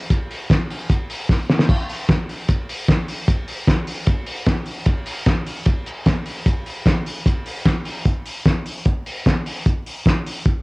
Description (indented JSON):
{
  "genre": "indie pop",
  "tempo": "151 BPM",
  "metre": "4/4",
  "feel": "straight",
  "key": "none",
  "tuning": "none",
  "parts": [
    { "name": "cloth-damped thuddy drum kit", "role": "drums", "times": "0.1-10.5 s", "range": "hi-hat, kick drum, ride cymbal, snare drum, splash cymbal", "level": "-18 LUFS", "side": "equal", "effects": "none" }
  ],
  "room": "moderate studio ambience, RT60 0.5 s",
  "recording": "home recording on cassette",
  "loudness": "-18 LUFS",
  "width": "side -26 dB against mid",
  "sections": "0.0-8.1 A section; 8.1-10.6 B section",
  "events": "drum fill 1.3-1.7",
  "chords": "none",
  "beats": "| 0.10 0.50 0.90 1.29 | 1.69 2.09 2.49 2.88 | 3.28 3.68 4.08 4.47 | 4.87 5.27 5.67 6.07 | 6.46 6.86 7.26 7.66 | 8.06 8.46 8.86 9.26 | 9.65 10.05 10.45"
}